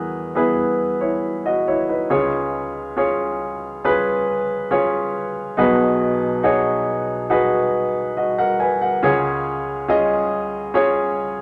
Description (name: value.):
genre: pop.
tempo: 70 BPM.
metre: 4/4.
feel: straight.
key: unclear.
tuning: A4 = 438 Hz.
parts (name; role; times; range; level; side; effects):
clear baby grand piano; solo; 0.0-11.4 s; B1 to G#5; -20 LUFS; equal; none.
room: wet studio reverb, RT60 0.7 s.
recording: none.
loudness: -20 LUFS.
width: mono.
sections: 0.0-2.1 A section; 2.1-11.4 B section.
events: none.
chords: 0.0 E; 2.1 C#; 5.6 G#m7/B; 9.0 C#.